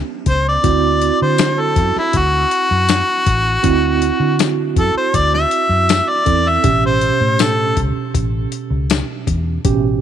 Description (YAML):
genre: straight-eighth soul blues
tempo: 80 BPM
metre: 4/4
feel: straight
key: unclear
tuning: A4 = 440 Hz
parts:
  - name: tine electric piano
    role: accompaniment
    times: 0.0-10.0 s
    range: B2 to A4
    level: -20 LUFS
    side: right 11 dB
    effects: medium tremolo
  - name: bright harmonica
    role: melody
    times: 0.3-7.8 s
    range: E4 to E5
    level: -16 LUFS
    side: left 1 dB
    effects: overdrive
  - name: vintage muted fingered electric bass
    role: bass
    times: 0.3-10.0 s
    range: A1 to D3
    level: -19 LUFS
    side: left 1 dB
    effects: none
  - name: dusty soul sampler-style drum kit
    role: drums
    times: 0.3-9.8 s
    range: hi-hat, kick drum, snare drum, tambourine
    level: -19 LUFS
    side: left 5 dB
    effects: none
room: light reverb, digital ambience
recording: 1960s-style stereo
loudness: -13 LUFS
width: side -9 dB against mid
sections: 0.0-10.0 A section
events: none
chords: 0.0 A9 (rootless); 0.6 D9; 6.6 A9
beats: | 0.64 1.39 2.14 2.89 | 3.64 4.39 5.14 5.89 | 6.64 7.39 8.14 8.89 | 9.64